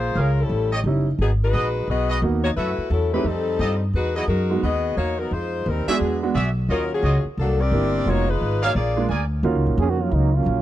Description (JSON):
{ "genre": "jazz", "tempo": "175 BPM", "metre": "4/4", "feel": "swing 62% on 8ths", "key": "Eb minor", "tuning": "A4 = 439 Hz", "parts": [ { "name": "warm saxophone section", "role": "melody", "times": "0.0-9.1 s", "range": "F#3 to Eb5", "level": "-24 LUFS", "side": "left 3 dB", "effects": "none" }, { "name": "upright bass", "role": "bass", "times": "0.0-10.6 s", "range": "F1 to G2", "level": "-22 LUFS", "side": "equal", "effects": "none" }, { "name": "warm trumpet section", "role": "stabs", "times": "0.2-9.2 s", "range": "E4 to Ab5", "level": "-27 LUFS", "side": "right 2 dB", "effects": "none" }, { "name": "clear grand piano", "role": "accompaniment", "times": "0.9-10.4 s", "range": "G3 to G4", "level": "-25 LUFS", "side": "right 5 dB", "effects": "none" }, { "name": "clear trombone section", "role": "second line", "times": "9.8-10.6 s", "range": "Db3 to Ab4", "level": "-22 LUFS", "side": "right 5 dB", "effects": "none" } ], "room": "small room ambience", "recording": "dry, close 1970s-style studio recording", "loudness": "-19 LUFS", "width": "side -13 dB against mid", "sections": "0.0-9.4 A section; 9.4-10.6 B section", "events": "trombone section solo 9.4-10.6", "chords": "0.0 Bbm7; 0.5 A7#11; 1.2 Abm7; 2.6 Gbm7; 3.3 F9; 3.9 Emaj9; 5.3 Fm7; 6.0 E9; 6.7 Ebm9; 7.4 C7; 8.1 Fm7b5; 8.8 Bb7; 9.4 Ebm9", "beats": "0.16 0.50 0.85 | 1.19 1.53 1.88 2.22 | 2.57 2.91 3.25 3.60 | 3.94 4.29 4.63 4.97 | 5.32 5.66 6.00 6.35 | 6.69 7.03 7.38 7.72 | 8.06 8.41 8.75 9.09 | 9.44 9.78 10.12 10.47" }